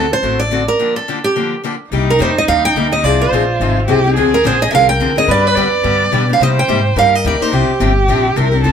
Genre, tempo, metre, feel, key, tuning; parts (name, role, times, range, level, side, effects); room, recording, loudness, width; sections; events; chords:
acoustic string swing (jazz manouche); 214 BPM; 4/4; swing 57% on 8ths; C minor; A4 = 440 Hz
picked steel-string acoustic guitar; melody; 0.0-7.8 s; G4 to G5; -15 LUFS; right 4 dB
picked steel-string acoustic guitar; accompaniment; 0.0-8.7 s; C3 to A4; -18 LUFS; left 6 dB
upright bass; bass; 0.0-8.7 s; F1 to C3; -17 LUFS; left 1 dB
dark violin; second line; 1.9-8.7 s; Eb4 to D5; -18 LUFS; right 2 dB
wet studio ambience, RT60 0.5 s; band playing live in one room; -11 LUFS; side -8 dB against mid
0.0-1.9 A section; 1.9-8.7 B section
break 0.8-1.9
0.0 D7; 0.8 Gm7; 1.9 Cm7; 3.0 Fm7; 4.2 Dm7b5; 5.3 G; 6.4 Cm7; 7.5 G7sus4